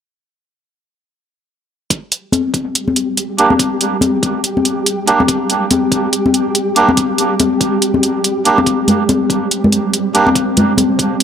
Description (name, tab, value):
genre	deep dubstep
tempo	142 BPM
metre	4/4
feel	swing 60% on 16ths, half-time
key	G minor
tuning	A4 = 444 Hz
part	electronic hi-hat	drums	1.9-11.2 s	none	-16 LUFS	right 2 dB	none
part	electronic kick drum	drums	1.9-11.1 s	none	-21 LUFS	equal	high-pass filter on kick, high-pass filter on room
part	flickering grainy texture	texture	2.7-11.2 s	G3 to G4	-19 LUFS	right 2 dB	built-in reverb
part	congas	percussion	2.3-10.9 s	none	-16 LUFS	left 3 dB	dub echo
part	melodica	stabs	3.4-10.3 s	Bb3 to G4	-17 LUFS	right 3 dB	low-pass filter, dub echo
room	moderate lush hall reverb, RT60 2.2 s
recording	dark, warm production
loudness	-12 LUFS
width	side -8 dB against mid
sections	1.9-11.2 A section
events	none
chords	none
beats	| 1.91 2.33 2.75 3.17 | 3.60 4.02 4.44 4.86 | 5.29 5.71 6.13 6.55 | 6.97 7.40 7.82 8.24 | 8.66 9.09 9.51 9.93 | 10.36 10.78 11.20